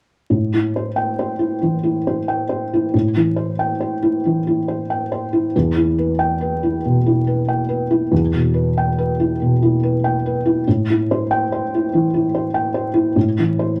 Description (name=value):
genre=neoclassical minimalist piano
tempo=93 BPM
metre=4/4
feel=rubato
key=A minor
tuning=A4 = 437 Hz
part: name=felt-muted upright piano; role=solo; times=0.3-13.8 s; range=E2 to G5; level=-19 LUFS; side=equal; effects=none
room=moderate club reverb, RT60 0.7 s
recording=vinyl crackle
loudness=-19 LUFS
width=mono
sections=0.3-13.8 A section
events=none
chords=0.3 Am7; 5.5 Em; 10.7 Am7